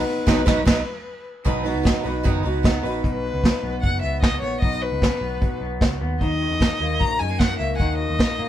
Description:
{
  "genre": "jangly indie pop",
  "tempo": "151 BPM",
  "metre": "4/4",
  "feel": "straight",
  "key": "B major",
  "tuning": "A4 = 440 Hz",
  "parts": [
    { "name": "warm violin", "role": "melody", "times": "0.0-8.5 s", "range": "B4 to A#5", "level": "-26 LUFS", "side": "left 2 dB", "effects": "none" },
    { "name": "electric guitar through a small old amp", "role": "arpeggios", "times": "0.0-8.5 s", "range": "B2 to B4", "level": "-28 LUFS", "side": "left 2 dB", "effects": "vibrato effect" },
    { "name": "picked twelve-string acoustic guitar", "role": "accompaniment", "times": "0.3-3.0 s", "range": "B2 to B4", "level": "-24 LUFS", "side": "right 4 dB", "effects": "none" },
    { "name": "vintage muted picked electric bass", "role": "bass", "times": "0.3-8.5 s", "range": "F#1 to B2", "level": "-27 LUFS", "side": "equal", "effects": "none" },
    { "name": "vintage brush drum kit", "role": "drums", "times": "0.3-8.3 s", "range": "crash cymbal, hi-hat, kick drum, snare drum", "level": "-20 LUFS", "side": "equal", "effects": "none" }
  ],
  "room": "light reverb",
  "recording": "band playing live in one room",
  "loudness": "-19 LUFS",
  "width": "side -11 dB against mid",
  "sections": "0.0-1.5 A section; 1.5-3.0 B section; 3.0-8.5 C section",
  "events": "band accent 0.0-1.5",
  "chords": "0.0 B; 6.2 D#m",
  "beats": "0.27 0.67 1.06 | 1.46 1.85 2.25 2.64 | 3.04 3.44 3.83 4.23 | 4.63 5.02 5.42 5.82 | 6.21 6.61 7.00 7.40 | 7.80 8.19"
}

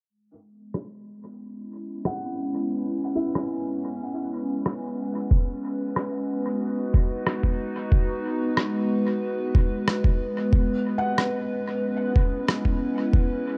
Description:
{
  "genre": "ambient dub",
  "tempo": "92 BPM",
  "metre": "4/4",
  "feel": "straight",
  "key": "C# minor",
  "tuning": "A4 = 441 Hz",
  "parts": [
    { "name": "warbly tape-like pad", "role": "sustained chords", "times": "0.9-13.6 s", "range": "G#3 to B4", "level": "-29 LUFS", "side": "equal", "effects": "chorus, built-in reverb, phaser" },
    { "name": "electronic rim click", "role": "drums", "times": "0.7-12.6 s", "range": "none", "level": "-30 LUFS", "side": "equal", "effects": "overdrive, dub echo" },
    { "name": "felt-muted upright piano", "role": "arpeggios", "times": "2.1-5.3, 11.0-13.6 s", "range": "E4 to F#5", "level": "-36 LUFS", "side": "equal", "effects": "low-pass filter, dub echo" },
    { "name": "electronic kick drum", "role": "drums", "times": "5.3-13.3 s", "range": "none", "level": "-22 LUFS", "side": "equal", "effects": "overdrive" }
  ],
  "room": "light reverb, digital ambience",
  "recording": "dark, warm production, low-pass filter",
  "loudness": "-26 LUFS",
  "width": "mono",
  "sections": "0.1-10.5 A section; 10.5-13.6 B section",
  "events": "filter sweep on felt piano 0.1-10.5; filter sweep 0.1-10.5",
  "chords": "0.1 C#m7; 5.3 G#m7; 10.5 C#m7",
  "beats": "| 0.09 0.74 1.40 2.05 | 2.70 3.35 4.01 4.66 | 5.31 5.96 6.62 7.27 | 7.92 8.57 9.22 9.88 | 10.53 11.18 11.83 12.48 | 13.14"
}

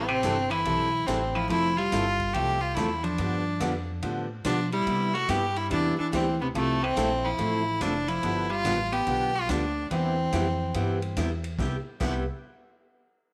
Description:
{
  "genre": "country, western swing",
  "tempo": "143 BPM",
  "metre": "4/4",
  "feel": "swing 66% on 8ths",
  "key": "C major",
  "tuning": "A4 = 439 Hz",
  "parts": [
    { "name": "clear fiddle", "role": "melody", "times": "0.0-11.1 s", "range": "A3 to G4", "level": "-30 LUFS", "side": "equal", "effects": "none" },
    { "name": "vintage hollow-body jazz guitar", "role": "second line", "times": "0.0-11.1 s", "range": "C3 to B3", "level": "-34 LUFS", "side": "equal", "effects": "none" },
    { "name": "picked steel-string acoustic guitar", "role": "accompaniment", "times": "0.0-12.2 s", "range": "C3 to A4", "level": "-34 LUFS", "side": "equal", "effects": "none" },
    { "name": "upright bass", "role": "bass", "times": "0.0-12.3 s", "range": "F1 to C3", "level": "-35 LUFS", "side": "equal", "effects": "none" },
    { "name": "swinging big-band drum kit", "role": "drums", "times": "0.2-12.1 s", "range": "crash cymbal, hi-hat, kick drum, ride cymbal, snare drum", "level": "-41 LUFS", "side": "equal", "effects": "none" }
  ],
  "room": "moderate plate reverb, RT60 1.8 s, studio reverb",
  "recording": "none",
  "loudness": "-27 LUFS",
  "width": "mono",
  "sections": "0.0-11.6 A section; 11.6-13.3 B section",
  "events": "none",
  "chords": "0.0 Am9; 1.5 Fmaj9; 3.2 G9; 4.9 Cmaj7; 6.5 Fmaj7; 8.2 G7; 9.9 Cmaj7",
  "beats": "0.23 0.66 1.08 | 1.50 1.92 2.34 2.76 | 3.18 3.60 4.03 4.45 | 4.87 5.29 5.71 6.13 | 6.55 6.97 7.39 7.81 | 8.23 8.65 9.07 9.49 | 9.91 10.33 10.75 11.17 | 11.59 12.01"
}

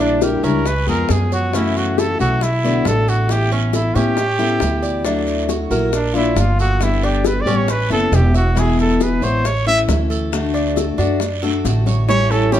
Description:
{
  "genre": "latin, Cuban son and guajira",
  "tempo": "136 BPM",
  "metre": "4/4",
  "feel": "straight",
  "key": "unclear",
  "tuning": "A4 = 440 Hz",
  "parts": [
    { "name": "clear trumpet", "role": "melody", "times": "0.0-12.6 s", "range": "B3 to E5", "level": "-20 LUFS", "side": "right 1 dB", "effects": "none" },
    { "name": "picked steel-string acoustic guitar", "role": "accompaniment", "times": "0.0-12.6 s", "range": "B2 to G#4", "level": "-21 LUFS", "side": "left 4 dB", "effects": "none" },
    { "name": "Cuban tres", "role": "arpeggios", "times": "0.0-12.6 s", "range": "C#4 to E5", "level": "-26 LUFS", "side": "right 3 dB", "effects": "none" },
    { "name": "upright bass", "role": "bass", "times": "0.0-12.6 s", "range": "E1 to A2", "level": "-19 LUFS", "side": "right 1 dB", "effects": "none" },
    { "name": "maracas", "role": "percussion", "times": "0.0-12.6 s", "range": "none", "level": "-35 LUFS", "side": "left 5 dB", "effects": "none" },
    { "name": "bongos", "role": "percussion", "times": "0.2-12.6 s", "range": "none", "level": "-24 LUFS", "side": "left 7 dB", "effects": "none" },
    { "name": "guiro", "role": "percussion", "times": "0.2-12.6 s", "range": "none", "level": "-33 LUFS", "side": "right 7 dB", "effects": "none" },
    { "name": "flamenco guitar", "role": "second line", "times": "12.1-12.6 s", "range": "C#4 to E4", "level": "-20 LUFS", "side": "right 6 dB", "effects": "none" }
  ],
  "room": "moderate studio reverb, RT60 0.7 s",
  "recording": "dark, warm production",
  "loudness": "-15 LUFS",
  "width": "side -11 dB against mid",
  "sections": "0.0-12.1 A section",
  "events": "trumpet solo 0.0-12.1; drum fill 11.7-12.1",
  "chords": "0.0 Gm6/Bb; 0.7 C#7; 1.5 F#m7; 2.4 Bm7; 3.3 Aadd9; 5.1 Dadd9; 5.9 Bb; 6.8 Gadd9; 7.7 Aadd9; 8.6 E; 9.5 A; 10.3 D; 12.1 A7",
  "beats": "0.22 0.66 1.10 | 1.54 1.98 2.42 2.86 | 3.30 3.74 4.18 4.62 | 5.05 5.49 5.93 6.37 | 6.81 7.25 7.69 8.13 | 8.57 9.01 9.45 9.89 | 10.33 10.77 11.21 11.65 | 12.10 12.54"
}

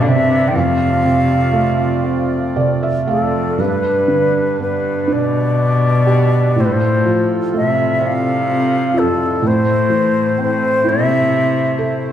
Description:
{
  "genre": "celtic folk, Celtic slow air",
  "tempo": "40 BPM (dotted quarters)",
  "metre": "6/8",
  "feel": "uneven beats, rubato",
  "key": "G mixolydian",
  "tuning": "A4 = 440 Hz",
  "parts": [
    { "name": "wooden flute", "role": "melody", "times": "0.0-12.0 s", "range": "A4 to G5", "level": "-18 LUFS", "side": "left 1 dB", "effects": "none" },
    { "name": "rich cello", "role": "second line", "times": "0.0-12.0 s", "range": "F2 to E3", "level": "-18 LUFS", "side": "left 2 dB", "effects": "none" },
    { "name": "felt-muted upright piano", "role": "accompaniment", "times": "0.0-12.1 s", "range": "C2 to F5", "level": "-18 LUFS", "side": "right 3 dB", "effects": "none" },
    { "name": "accordion", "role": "sustained chords", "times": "0.0-12.1 s", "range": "A2 to D5", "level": "-26 LUFS", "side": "right 2 dB", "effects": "light tremolo tuning" }
  ],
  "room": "wet recital hall reverb, RT60 1.6 s",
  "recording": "recorded in a church or concert hall",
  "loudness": "-13 LUFS",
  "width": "side -10 dB against mid",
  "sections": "0.0-3.6 A section; 3.6-12.1 B section",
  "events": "felt piano fill 2.0-3.6",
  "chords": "0.0 Csus2; 0.6 F; 3.6 G; 6.6 Fadd9; 9.5 Am",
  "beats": "| 0.56 2.05 | 3.59 5.11 | 6.59 8.04 | 9.46 10.87"
}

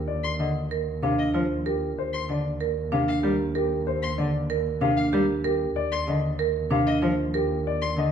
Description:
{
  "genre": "classical, minimalist pattern music",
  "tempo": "190 BPM",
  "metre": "6/4",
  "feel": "straight",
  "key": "Eb major",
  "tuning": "A4 = 440 Hz",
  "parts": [
    { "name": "warm double bass", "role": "bass", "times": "0.0-8.1 s", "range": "Eb2", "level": "-31 LUFS", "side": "right 2 dB", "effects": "none" },
    { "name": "warm grand piano", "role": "melody", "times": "0.1-8.1 s", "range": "G4 to F5", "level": "-29 LUFS", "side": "left 8 dB", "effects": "none" },
    { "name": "rich violin", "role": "arpeggios", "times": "0.2-7.9 s", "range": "Eb5 to C6", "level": "-34 LUFS", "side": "left 5 dB", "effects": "none" },
    { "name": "rich cello", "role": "accompaniment", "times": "0.4-8.1 s", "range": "C3 to G3", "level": "-29 LUFS", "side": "left 1 dB", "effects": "none" },
    { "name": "marimba with medium hard mallets", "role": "arpeggios", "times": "0.7-7.5 s", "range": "D4 to Bb4", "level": "-27 LUFS", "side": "right 5 dB", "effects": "none" }
  ],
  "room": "wet large studio reverb, RT60 1.4 s",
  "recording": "heard from further back in the room",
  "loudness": "-23 LUFS",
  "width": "side -8 dB against mid",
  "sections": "0.0-8.1 A section",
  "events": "none",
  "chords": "0.0 Ebmaj7(no3)",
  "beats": "| 0.08 0.39 0.71 1.03 1.34 1.66 | 1.97 2.29 2.60 2.92 3.24 3.55 | 3.87 4.18 4.50 4.82 5.13 5.45 | 5.76 6.08 6.39 6.71 7.03 7.34 | 7.66 7.97"
}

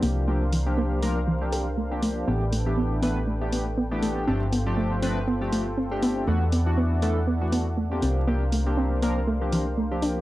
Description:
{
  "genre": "deep house",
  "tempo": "120 BPM",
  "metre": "4/4",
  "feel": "swing 56% on 16ths",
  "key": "unclear",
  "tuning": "A4 = 441 Hz",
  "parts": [
    { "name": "warm analog pad", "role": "sustained chords", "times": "0.0-10.2 s", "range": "D4 to G5", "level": "-34 LUFS", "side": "left 1 dB", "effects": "chorus" },
    { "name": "soft round pluck", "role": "arpeggios", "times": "0.0-10.1 s", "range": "E3 to A4", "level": "-28 LUFS", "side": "right 1 dB", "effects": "chorus, analog delay" },
    { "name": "chorused polysynth", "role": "stabs", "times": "0.0-10.2 s", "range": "E3 to B4", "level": "-29 LUFS", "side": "equal", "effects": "analog delay" },
    { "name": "hollow-body short-scale fingered electric bass", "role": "bass", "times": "0.0-10.2 s", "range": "G1 to E2", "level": "-26 LUFS", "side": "equal", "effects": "none" },
    { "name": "electronic hi-hat", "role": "drums", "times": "0.0-10.1 s", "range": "none", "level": "-38 LUFS", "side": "equal", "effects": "vintage 12-bit sampler grit" }
  ],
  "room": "digital ambience",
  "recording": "dry, gritty hardware recording, transformer saturation, vinyl crackle",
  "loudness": "-23 LUFS",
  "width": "side -16 dB against mid",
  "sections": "0.0-10.2 A section",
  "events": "filter sweep on synth arpeggio sound 0.0-10.2",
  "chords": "0.0 C9sus4; 2.3 A9sus4; 4.3 G9sus4; 6.3 E9sus4; 8.0 C9sus4",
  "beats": "| 0.28 0.78 1.27 1.77 | 2.27 2.77 3.27 3.77 | 4.28 4.78 5.28 5.78 | 6.28 6.78 7.28 7.78 | 8.28 8.78 9.28 9.78"
}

